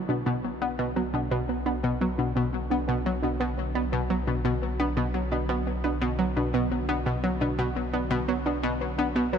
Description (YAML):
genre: ambient, sequencer-driven space music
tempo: 86 BPM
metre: 4/4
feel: straight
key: B minor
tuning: A4 = 440 Hz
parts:
  - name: sweeping resonant pad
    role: sustained chords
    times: 0.0-9.4 s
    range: D3 to F#4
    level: -38 LUFS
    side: left 1 dB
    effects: chorus
  - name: warm sub bass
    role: bass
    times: 0.0-9.4 s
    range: B1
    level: -33 LUFS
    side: equal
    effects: none
  - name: warbly dusty pluck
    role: arpeggios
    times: 0.1-9.4 s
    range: B3 to B4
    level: -30 LUFS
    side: right 3 dB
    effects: chorus, auto-pan, ping-pong delay
  - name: analog pluck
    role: riff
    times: 0.1-9.4 s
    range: B2 to B3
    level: -28 LUFS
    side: left 1 dB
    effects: chorus, ping-pong delay
room: moderate huge ambient reverb, RT60 8.0 s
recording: nothing above 10.8 kHz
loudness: -25 LUFS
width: side -7 dB against mid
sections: 0.0-9.4 A section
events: none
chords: 0.0 Bm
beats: 0.61 1.31 | 2.00 2.70 3.40 4.10 | 4.80 5.49 6.19 6.89 | 7.59 8.28 8.98